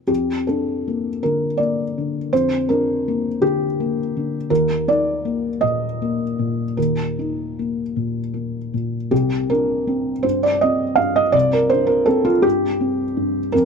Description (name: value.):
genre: neoclassical minimalist piano.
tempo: 54 BPM (dotted quarters).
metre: 6/8.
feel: rubato.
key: unclear.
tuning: A4 = 440 Hz.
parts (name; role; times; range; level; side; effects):
felt-muted upright piano; solo; 0.0-13.7 s; C2 to F5; -18 LUFS; equal; none.
room: little or no reverb.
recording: close, detailed microphones.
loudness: -18 LUFS.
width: side -5 dB against mid.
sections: 0.0-9.1 A section; 9.1-13.7 A section.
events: none.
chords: 0.1 Bb/F; 4.5 Eb5; 9.1 Csus2.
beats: | 0.09 1.22 | 2.31 3.41 | 4.50 5.62 | 6.77 7.95 | 9.11 10.24 | 11.34 12.44 | 13.53.